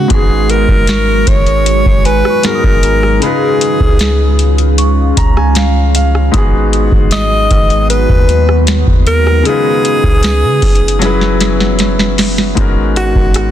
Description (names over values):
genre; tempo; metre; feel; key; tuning
contemporary R&B; 77 BPM; 4/4; straight; G# dorian; A4 = 441 Hz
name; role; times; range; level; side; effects
breathy alto saxophone; melody; 0.0-13.5 s; F#4 to D#5; -15 LUFS; equal; digital delay
clear grand piano; accompaniment; 0.0-13.5 s; G#2 to A#5; -17 LUFS; left 4 dB; none
deep dark ambient pad; sustained chords; 0.0-12.6 s; D#3 to F#4; -19 LUFS; right 1 dB; chorus, built-in reverb, sidechain pumping
soft 808-style bass; bass; 0.0-13.5 s; F#1 to C#3; -13 LUFS; equal; none
booming analog drum machine; drums; 0.1-13.5 s; hi-hat, kick drum, rim click, snare drum; -13 LUFS; equal; vintage 12-bit sampler grit
celesta; texture; 0.9-7.8 s; G#5 to D#6; -26 LUFS; right 4 dB; digital delay
room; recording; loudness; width
light reverb, studio reverb; dense, heavily limited modern master; -8 LUFS; side -11 dB against mid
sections
0.0-12.6 A section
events
grand piano fill 4.8-6.3; drum fill 11.0-12.6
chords
0.1 G#m9; 3.2 C#9; 6.3 G#m7; 9.5 C#9; 11.0 F#9sus4; 12.6 G#m11